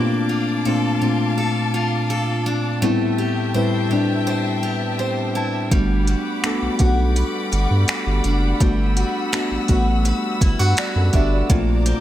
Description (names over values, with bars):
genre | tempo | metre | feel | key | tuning
contemporary R&B | 83 BPM | 4/4 | straight | G major | A4 = 440 Hz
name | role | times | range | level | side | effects
muted felt-like synth keys | accompaniment | 0.0-12.0 s | A2 to A5 | -21 LUFS | left 1 dB | chorus
clear studio string section | sustained chords | 0.0-12.0 s | G3 to E6 | -28 LUFS | left 2 dB | sidechain pumping
picked steel-string acoustic guitar | arpeggios | 0.0-12.0 s | Bb2 to C5 | -25 LUFS | left 1 dB | tape echo
saturated sub bass | bass | 5.7-11.9 s | F#1 to G2 | -19 LUFS | equal | none
smooth R&B drum kit | drums | 5.7-12.0 s | finger snaps, hi-hat, kick drum | -20 LUFS | equal | none
room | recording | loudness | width
light reverb, digital ambience | none | -17 LUFS | side -12 dB against mid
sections
0.0-12.0 A section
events
synth keys fill 4.6-5.7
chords
0.0 Bbmaj7; 2.8 Am7; 5.7 Gmaj7; 11.5 Bbmaj7